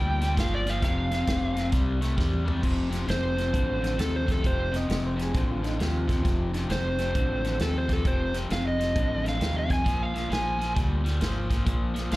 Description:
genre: electric blues shuffle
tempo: 133 BPM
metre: 4/4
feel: swing 65% on 8ths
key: F mixolydian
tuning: A4 = 438 Hz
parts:
  - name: overdriven slide guitar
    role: melody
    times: 0.0-12.2 s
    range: A4 to Ab5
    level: -30 LUFS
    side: right 1 dB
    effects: none
  - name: crunchy overdriven guitar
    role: riff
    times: 0.0-12.2 s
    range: F2 to A3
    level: -30 LUFS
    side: left 2 dB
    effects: none
  - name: deep dub fingered electric bass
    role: bass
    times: 0.0-12.2 s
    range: F1 to E2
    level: -29 LUFS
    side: equal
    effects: none
  - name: natural country drum kit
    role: drums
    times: 0.2-12.2 s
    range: crash cymbal, hi-hat, kick drum, snare drum, toms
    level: -30 LUFS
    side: equal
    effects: none
  - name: electric guitar through a small old amp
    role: second line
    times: 4.8-6.6 s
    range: Eb4 to Eb5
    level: -36 LUFS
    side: right 2 dB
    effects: slapback echo
room: small room ambience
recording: live gig heard through the venue's PA, club reverb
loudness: -24 LUFS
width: side -18 dB against mid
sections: 0.0-2.6 A section; 2.6-12.2 B section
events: electric slide guitar solo 0.0-2.6; drum fill 2.2-2.6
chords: 0.0 Bb; 0.8 F5; 1.7 C; 2.6 F7; 9.9 Bb7

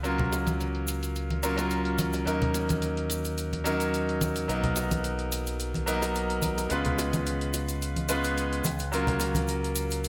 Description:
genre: nu-disco, nu disco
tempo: 108 BPM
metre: 4/4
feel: swing 53% on 16ths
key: unclear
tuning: A4 = 440 Hz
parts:
  - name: bright concert grand piano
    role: accompaniment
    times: 0.0-10.1 s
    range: Gb3 to Cb5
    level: -31 LUFS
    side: equal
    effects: digital delay
  - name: fingered electric bass with an envelope filter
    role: bass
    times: 0.0-10.1 s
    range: B1 to Eb2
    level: -35 LUFS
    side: equal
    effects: none
  - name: hi-hat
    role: drums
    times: 0.0-10.1 s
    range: none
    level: -40 LUFS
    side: equal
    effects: low-pass filter on hats, low-pass filter on room
  - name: cabasa, congas and bongos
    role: percussion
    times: 0.0-10.1 s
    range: none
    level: -35 LUFS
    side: equal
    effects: none
room: wet lush hall reverb, RT60 1.6 s, studio reverb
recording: bright 1980s-style digital production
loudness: -29 LUFS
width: mono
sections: 0.0-10.1 A section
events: none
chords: 0.0 Gbmaj7/Db; 2.3 Ebm7; 4.5 Bmaj7; 6.7 Db7; 8.7 Gbmaj7/Db

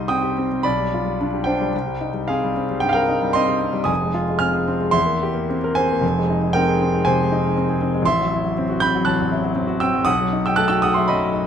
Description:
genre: classical, romantic character piece for solo piano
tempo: 106-123 BPM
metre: 4/4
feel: rubato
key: C minor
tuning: A4 = 440 Hz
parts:
  - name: clear concert grand piano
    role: solo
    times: 0.0-11.5 s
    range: F1 to G6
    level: -18 LUFS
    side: equal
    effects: none
room: moderate recital hall reverb, RT60 1.6 s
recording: close, detailed microphones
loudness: -18 LUFS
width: side -8 dB against mid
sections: 0.0-11.5 A section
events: none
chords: 0.0 Cm; 0.6 G7/B; 1.7 Cm; 3.9 Fm; 5.0 C7/E; 6.0 Fm7; 8.0 F#m7b5/A; 10.1 B7

